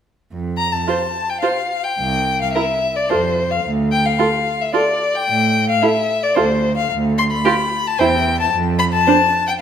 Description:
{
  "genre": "quick classical-period movement for string quartet",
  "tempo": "110 BPM",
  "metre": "3/4",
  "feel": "rubato",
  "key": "F major",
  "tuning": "A4 = 440 Hz",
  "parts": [
    { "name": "rich cello", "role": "bass", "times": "0.3-9.0 s", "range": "C2 to A2", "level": "-21 LUFS", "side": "right 3 dB", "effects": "none" },
    { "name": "rich violin", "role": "melody", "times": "0.6-9.5 s", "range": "C5 to C6", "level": "-18 LUFS", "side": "left 4 dB", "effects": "none" },
    { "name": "rich violin", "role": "second line", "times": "0.9-9.1 s", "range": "G4 to C5", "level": "-23 LUFS", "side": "right 1 dB", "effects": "none" },
    { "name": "rich viola", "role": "accompaniment", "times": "0.9-9.2 s", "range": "D4 to F4", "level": "-22 LUFS", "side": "right 6 dB", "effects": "none" }
  ],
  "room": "wet stone room reverb, RT60 1.4 s",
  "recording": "none",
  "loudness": "-15 LUFS",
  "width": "side -8 dB against mid",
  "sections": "0.3-9.6 A section",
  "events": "none",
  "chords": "0.3 F; 2.0 C; 3.1 F5; 3.6 Dm; 5.3 A5; 6.4 Dm; 8.0 C/E (rootless); 8.5 Dm/F (rootless)"
}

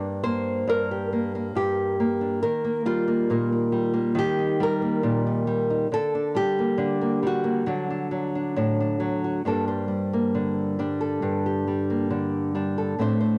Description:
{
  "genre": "folk, solo fingerstyle acoustic guitar",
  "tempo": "68 BPM",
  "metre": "4/4",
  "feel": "straight",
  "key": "G minor",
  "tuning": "A4 = 440 Hz",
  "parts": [
    { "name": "nylon-string guitar", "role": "solo", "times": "0.0-13.4 s", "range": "G2 to D5", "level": "-25 LUFS", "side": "equal", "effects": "none" }
  ],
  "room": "moderate studio reverb, RT60 0.6 s",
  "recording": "home recording on cassette",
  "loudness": "-25 LUFS",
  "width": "mono",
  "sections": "0.0-9.5 A section; 9.5-13.4 B section",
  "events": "none",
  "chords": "0.0 Gm; 2.4 Eb; 5.9 Gm/D; 7.7 D; 9.5 Gmadd9"
}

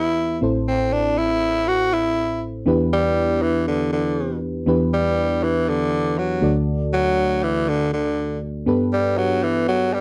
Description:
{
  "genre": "pop",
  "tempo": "120 BPM",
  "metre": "4/4",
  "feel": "straight",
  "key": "E minor",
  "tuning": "A4 = 441 Hz",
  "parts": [
    { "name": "raspy tenor saxophone", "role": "melody", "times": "0.0-10.0 s", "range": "D3 to F#4", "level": "-22 LUFS", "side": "equal", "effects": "slapback echo" },
    { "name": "mellow FM electric piano", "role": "accompaniment", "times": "0.0-10.0 s", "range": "A1 to D5", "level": "-24 LUFS", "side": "equal", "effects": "chorus" }
  ],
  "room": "light reverb",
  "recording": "dry, close 1970s-style studio recording",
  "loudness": "-21 LUFS",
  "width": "mono",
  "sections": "0.0-2.7 A section; 2.7-10.0 B section",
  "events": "none",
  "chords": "0.4 Am; 2.7 Em7; 6.4 D; 8.7 Gadd9"
}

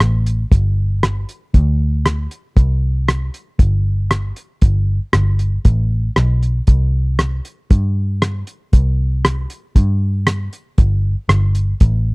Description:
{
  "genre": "honky-tonk and classic country",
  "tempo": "117 BPM",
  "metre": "4/4",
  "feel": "straight",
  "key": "unclear",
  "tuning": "A4 = 440 Hz",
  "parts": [
    { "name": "vintage muted picked electric bass", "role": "bass", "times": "0.0-12.1 s", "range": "G1 to G2", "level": "-16 LUFS", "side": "equal", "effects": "none" },
    { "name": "cloth-damped thuddy drum kit", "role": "drums", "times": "0.0-11.9 s", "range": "hi-hat, kick drum, rim click", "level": "-12 LUFS", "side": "equal", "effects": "none" }
  ],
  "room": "little or no reverb",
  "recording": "dry, close 1970s-style studio recording",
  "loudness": "-14 LUFS",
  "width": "side -36 dB against mid",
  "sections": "0.0-12.1 A section",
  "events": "none",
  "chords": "none"
}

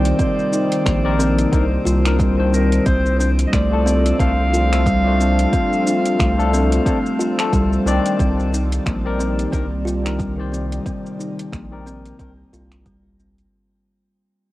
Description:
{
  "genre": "organic downtempo",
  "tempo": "90 BPM",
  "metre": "4/4",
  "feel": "swing 57% on 16ths",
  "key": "C dorian",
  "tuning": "A4 = 440 Hz",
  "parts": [
    { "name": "clear clarinet", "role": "melody", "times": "0.0-7.5 s", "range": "Bb4 to F5", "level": "-24 LUFS", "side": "equal", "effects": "cassette tape, tape echo, shimmer reverb" },
    { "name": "barky tine electric piano", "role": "accompaniment", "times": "0.0-12.3 s", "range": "Eb3 to D5", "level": "-25 LUFS", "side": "left 5 dB", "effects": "phaser, sidechain pumping, low-pass filter, cassette tape, tape echo, shimmer reverb" },
    { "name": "warbly tape-like pad", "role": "sustained chords", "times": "0.0-13.5 s", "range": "C3 to D5", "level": "-27 LUFS", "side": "equal", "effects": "chorus, built-in reverb, sidechain pumping, cassette tape, shimmer reverb" },
    { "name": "kalimba", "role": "arpeggios", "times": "0.0-13.4 s", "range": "G3 to F4", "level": "-22 LUFS", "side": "equal", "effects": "cassette tape, tape echo, shimmer reverb" },
    { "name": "round analog bass", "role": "bass", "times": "0.0-13.5 s", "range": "Bb1 to C2", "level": "-20 LUFS", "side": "equal", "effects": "sidechain pumping" },
    { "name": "drifting glass-harmonics texture", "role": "texture", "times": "0.0-8.2 s", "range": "C4 to C5", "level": "-32 LUFS", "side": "left 2 dB", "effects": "chorus, built-in reverb, cassette tape, shimmer reverb" },
    { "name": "deep house drum kit", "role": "drums", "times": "0.1-13.5 s", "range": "finger snaps, hi-hat, shaker", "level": "-28 LUFS", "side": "equal", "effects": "overdrive, studio reverb, cassette tape" },
    { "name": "electronic kick drum", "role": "drums", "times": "0.2-13.0 s", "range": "none", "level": "-22 LUFS", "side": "equal", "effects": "overdrive, studio reverb, cassette tape" }
  ],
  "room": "moderate booth ambience, RT60 0.2 s",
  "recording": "home recording on cassette, faint mains hum",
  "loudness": "-15 LUFS",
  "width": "side -17 dB against mid",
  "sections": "0.0-8.2 A section; 8.2-13.5 B section",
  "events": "fade-out 8.2-13.5",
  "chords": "0.0 Cm9; 2.9 Dm/C; 8.2 Cm9"
}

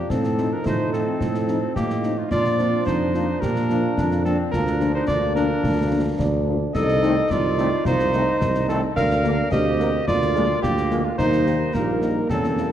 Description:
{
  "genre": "military-style march for wind band",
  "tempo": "108 BPM",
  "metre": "2/4",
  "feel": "straight",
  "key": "Bb major",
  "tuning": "A4 = 439 Hz",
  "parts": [
    { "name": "warm cornet", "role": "melody", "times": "0.0-12.7 s", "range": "F4 to F5", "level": "-25 LUFS", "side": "right 1 dB", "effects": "none" },
    { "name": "clear euphonium", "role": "second line", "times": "0.0-12.6 s", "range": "A3 to G4", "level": "-28 LUFS", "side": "right 2 dB", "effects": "none" },
    { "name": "bright trombone section", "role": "sustained chords", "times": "0.0-12.7 s", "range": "F3 to Eb4", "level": "-29 LUFS", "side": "right 1 dB", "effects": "none" },
    { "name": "clear woodwind section", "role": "second line", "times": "0.1-12.7 s", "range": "Ab3 to Bb4", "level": "-27 LUFS", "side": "left 2 dB", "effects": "none" },
    { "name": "mellow tuba", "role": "bass", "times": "0.1-12.7 s", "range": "Bb1 to Bb2", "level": "-24 LUFS", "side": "right 2 dB", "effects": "none" },
    { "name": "concert snare drum, concert bass drum and clash cymbals", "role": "drums", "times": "0.1-12.7 s", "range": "none", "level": "-29 LUFS", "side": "left 1 dB", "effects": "none" },
    { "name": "mellow French horn section", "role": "accompaniment", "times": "0.4-12.7 s", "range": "D3 to Eb4", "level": "-30 LUFS", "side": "left 5 dB", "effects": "none" }
  ],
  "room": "moderate scoring stage reverb, RT60 1.5 s",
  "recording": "dark, warm production",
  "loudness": "-19 LUFS",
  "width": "side -10 dB against mid",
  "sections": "0.0-12.7 A section",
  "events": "none",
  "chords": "0.1 F7/A; 2.3 Bb; 4.5 Bb/D; 6.8 Adim/C; 9.0 Bb/D; 10.1 Bb7/D; 11.2 Eb"
}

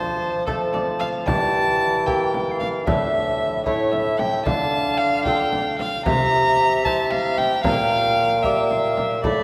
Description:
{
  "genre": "classical, renaissance-style consort dance",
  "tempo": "75 BPM (dotted quarters)",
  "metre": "6/8",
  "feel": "straight",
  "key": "unclear",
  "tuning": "A4 = 436 Hz",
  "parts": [
    { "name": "alto recorder", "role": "melody", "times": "0.0-9.4 s", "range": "E5 to A5", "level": "-30 LUFS", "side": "equal", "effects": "none" },
    { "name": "warm violin", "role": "second line", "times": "0.0-9.4 s", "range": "A4 to Bb5", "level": "-24 LUFS", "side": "equal", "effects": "none" },
    { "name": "lute", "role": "accompaniment", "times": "0.0-9.4 s", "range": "A2 to E5", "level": "-29 LUFS", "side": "equal", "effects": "none" },
    { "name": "warm bassoon", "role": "bass", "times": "0.0-9.4 s", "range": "A2 to F3", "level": "-28 LUFS", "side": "equal", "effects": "none" },
    { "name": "frame drum", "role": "percussion", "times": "0.5-9.4 s", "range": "none", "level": "-31 LUFS", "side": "equal", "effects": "none" }
  ],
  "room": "wet church reverb, RT60 3.2 s",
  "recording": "none",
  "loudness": "-21 LUFS",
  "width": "mono",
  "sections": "0.0-9.4 A section",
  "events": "none",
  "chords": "0.0 F; 1.3 Edim; 2.9 Asus4; 3.7 A5; 4.5 Dm; 6.1 C; 7.6 Gm/Bb"
}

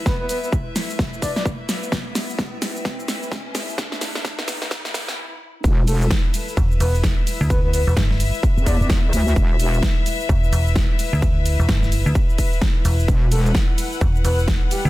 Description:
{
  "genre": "bass house",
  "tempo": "129 BPM",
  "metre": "4/4",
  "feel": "swing 60% on 16ths",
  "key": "unclear",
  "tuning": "A4 = 441 Hz",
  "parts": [
    { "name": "riser", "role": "sound effects", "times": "0.0-5.2 s", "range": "none", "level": "-36 LUFS", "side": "equal", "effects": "none" },
    { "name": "clear studio string section", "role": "texture", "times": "0.0-14.9 s", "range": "E4 to F#5", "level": "-30 LUFS", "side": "left 4 dB", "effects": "sidechain pumping" },
    { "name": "breathy flute-like synth lead", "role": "melody", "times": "0.1-1.4, 5.9-8.9, 13.3-14.9 s", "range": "G4 to D5", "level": "-29 LUFS", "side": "equal", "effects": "chorus, dub echo" },
    { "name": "big-room dance drum kit", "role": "drums", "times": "0.1-14.9 s", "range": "cabasa, hi-hat, ride cymbal, snare drum", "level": "-26 LUFS", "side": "equal", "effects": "small room ambience" },
    { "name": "electronic kick drum", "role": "drums", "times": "0.1-14.6 s", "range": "none", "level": "-20 LUFS", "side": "equal", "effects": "small room ambience" },
    { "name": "wobble bass", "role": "bass", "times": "5.6-9.8, 13.1-13.5 s", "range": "E1 to E2", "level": "-19 LUFS", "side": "equal", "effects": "chorus, tube saturation, sidechain pumping" },
    { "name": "metallic FM bass", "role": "bass", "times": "6.6-14.9 s", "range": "E1 to D2", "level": "-19 LUFS", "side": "equal", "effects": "sidechain pumping" }
  ],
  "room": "digital ambience",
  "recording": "dense, heavily limited modern master, high-pass filter",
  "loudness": "-18 LUFS",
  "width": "side -17 dB against mid",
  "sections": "0.0-5.6 A section; 5.6-14.9 B section",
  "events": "build-up 0.0-5.6; drum fill 0.0-5.2; riser 0.0-5.2; filter sweep 0.0-5.6; stop 5.2-5.6; drop 5.6-14.9",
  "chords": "0.0 E5"
}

